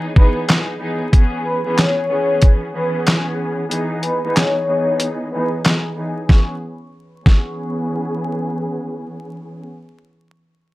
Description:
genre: hip hop, boom-bap hip-hop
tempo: 93 BPM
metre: 4/4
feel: swing 63% on 16ths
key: C# minor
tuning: A4 = 441 Hz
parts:
  - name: rich studio string section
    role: accompaniment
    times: 0.0-9.6 s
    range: E3 to G#4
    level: -23 LUFS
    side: equal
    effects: high-pass filter, low-pass filter
  - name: vibraphone with soft mallets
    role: melody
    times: 0.2-8.2 s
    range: B4 to C#6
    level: -22 LUFS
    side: left 1 dB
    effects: high-pass filter, low-pass filter, tape echo
  - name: boom bap sampler-style drum kit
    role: drums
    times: 0.2-7.5 s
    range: handclaps, hi-hat, kick drum, snare drum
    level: -12 LUFS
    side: equal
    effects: none
room: light reverb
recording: vinyl crackle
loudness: -16 LUFS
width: side -18 dB against mid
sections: 0.0-6.3 A section; 6.3-8.9 B section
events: filter sweep 0.0-6.3; break 3.7-6.3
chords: 0.0 Emaj7; 1.1 C#m7; 3.7 Emaj7; 6.3 C#m7

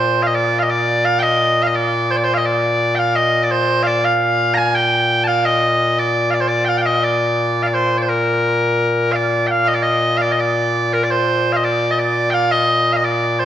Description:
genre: scottish traditional, Scottish pipe music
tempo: 85 BPM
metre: 2/4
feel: straight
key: Bb major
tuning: A4 = 441 Hz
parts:
  - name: loud bright bagpipes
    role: solo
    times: 0.0-13.5 s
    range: Bb2 to Bb5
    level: -14 LUFS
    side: equal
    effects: none
room: wet scoring stage reverb, RT60 1.5 s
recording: worn, warbling old tape, cassette tape, warbly pitch drift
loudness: -14 LUFS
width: side -10 dB against mid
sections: 0.0-9.5 A section; 9.5-13.5 A section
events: none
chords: none

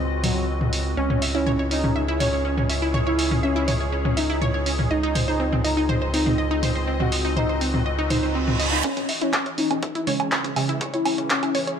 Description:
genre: melodic techno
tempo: 122 BPM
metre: 4/4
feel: straight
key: C# harmonic minor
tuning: A4 = 440 Hz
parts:
  - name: evolving wavetable pad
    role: sustained chords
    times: 0.0-11.8 s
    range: E3 to D#5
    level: -31 LUFS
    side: left 2 dB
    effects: ensemble chorus, built-in reverb, sidechain pumping
  - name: gritty driven synth bass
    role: bass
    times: 0.0-8.8 s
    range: C#2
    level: -26 LUFS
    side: equal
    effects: distortion, sidechain pumping
  - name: analog synth brass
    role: melody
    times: 0.2-11.5 s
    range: F#3 to F#4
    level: -26 LUFS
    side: equal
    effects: chorus, sidechain pumping, tape echo
  - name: punchy analog drum machine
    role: drums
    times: 0.2-11.8 s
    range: handclaps, hi-hat, toms, woodblock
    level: -25 LUFS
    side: equal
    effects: high-pass filter on toms, high-pass filter on hats, high-pass filter on perc, high-pass filter on snare, high-pass filter on room
  - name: wide unison pluck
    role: arpeggios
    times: 1.0-11.7 s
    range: B#3 to E5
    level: -27 LUFS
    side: equal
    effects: vintage 12-bit sampler grit, sidechain pumping, tape echo
  - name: reverse cymbal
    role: sound effects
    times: 8.2-8.8 s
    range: none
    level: -28 LUFS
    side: right 5 dB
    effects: none
  - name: electronic kick drum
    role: drums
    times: 8.8-11.4 s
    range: none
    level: -34 LUFS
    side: equal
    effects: high-pass filter on kick, high-pass filter on room
  - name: synth brass stab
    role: stabs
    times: 10.1-11.8 s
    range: C#3 to C#4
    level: -30 LUFS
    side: right 5 dB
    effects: chorus, phaser, sidechain pumping, tape echo
room: moderate lush hall reverb, RT60 2.2 s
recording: none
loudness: -20 LUFS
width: side -8 dB against mid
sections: 0.0-8.8 A section; 8.8-11.8 B section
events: filter sweep on ambient pad 0.0-8.8, 8.8-11.8; reverse cymbal 8.2-8.8; build-up 8.8-11.8; filter sweep on analog polysynth 8.8-11.8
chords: 0.0 G#/C# (rootless); 1.0 C#m; 4.9 G#/C#; 8.8 C#m

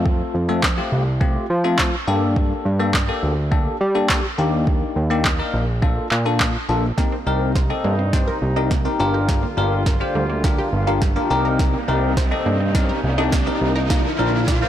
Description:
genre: dance-pop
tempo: 104 BPM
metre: 4/4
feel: straight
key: C dorian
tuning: A4 = 440 Hz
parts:
  - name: bell-like tine electric piano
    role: accompaniment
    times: 0.0-14.7 s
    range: A3 to C5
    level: -23 LUFS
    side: left 4 dB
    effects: phaser, sidechain pumping
  - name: fat analog bass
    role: bass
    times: 0.0-14.6 s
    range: G1 to G3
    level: -21 LUFS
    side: right 1 dB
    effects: sidechain pumping
  - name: smooth R&B drum kit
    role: drums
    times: 0.1-14.6 s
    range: handclaps, kick drum, snare drum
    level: -20 LUFS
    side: right 1 dB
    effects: overdrive
  - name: warm brass ensemble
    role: sustained chords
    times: 7.0-14.7 s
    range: C3 to F4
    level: -28 LUFS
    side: right 2 dB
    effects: sidechain pumping
  - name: wide unison pluck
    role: arpeggios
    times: 7.0-14.7 s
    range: G3 to F5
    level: -30 LUFS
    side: right 5 dB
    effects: auto-pan, sidechain pumping, tape echo
  - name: riser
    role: sound effects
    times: 9.5-14.7 s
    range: none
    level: -30 LUFS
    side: right 2 dB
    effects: none
room: light reverb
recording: blown-out, overdriven recording, overdrive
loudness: -17 LUFS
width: side -11 dB against mid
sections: 0.0-7.0 A section; 7.0-14.7 B section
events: build-up 7.0-14.7; drum fill 7.0-14.7; riser 9.5-14.7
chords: 0.0 F; 2.1 Gmadd9; 4.4 Ebmaj7; 5.8 Bbmaj7; 7.0 Cm7; 9.0 Gm7; 11.3 Cm7; 13.9 Bb

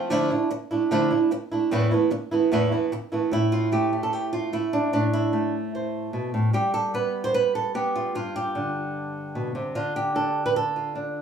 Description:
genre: flamenco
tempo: 149 BPM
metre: 4/4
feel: straight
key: A minor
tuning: A4 = 440 Hz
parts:
  - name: flamenco guitar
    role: solo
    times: 0.0-11.2 s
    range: E2 to C5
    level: -22 LUFS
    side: right 2 dB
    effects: none
room: moderate studio reverb, RT60 0.6 s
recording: band playing live in one room, studio ambience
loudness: -22 LUFS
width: side -7 dB against mid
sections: 0.0-3.3 A section; 3.3-11.2 B section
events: none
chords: 0.1 Dmadd9; 1.7 Esus4; 3.3 Am; 6.5 G; 9.8 Dm

